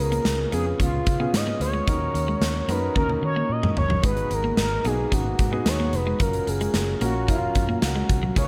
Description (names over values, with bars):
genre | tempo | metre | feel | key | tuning
1980s-style pop | 111 BPM | 4/4 | straight | F# major | A4 = 440 Hz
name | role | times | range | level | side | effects
expressive synth lead | melody | 0.0-8.5 s | E#4 to D#5 | -30 LUFS | equal | chorus
clear concert grand piano | accompaniment | 0.0-8.5 s | G#2 to E#5 | -32 LUFS | equal | none
vintage muted fingered electric bass | bass | 0.0-8.5 s | E#1 to D#3 | -30 LUFS | equal | none
clean electric guitar | riff | 0.1-8.5 s | F#3 to D#4 | -34 LUFS | equal | subtle chorus
big rock drum kit | drums | 0.1-8.5 s | hi-hat, kick drum, snare drum, toms | -28 LUFS | equal | gated reverb
room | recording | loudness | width
light reverb | none | -23 LUFS | mono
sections
0.0-8.5 A section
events
drum fill 3.0-4.0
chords
0.0 C#7; 1.9 D#m7; 4.0 G#m7; 6.2 F#maj7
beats
0.25 0.79 1.33 | 1.87 2.42 2.96 3.50 | 4.04 4.58 5.12 5.66 | 6.20 6.74 7.28 7.82 | 8.36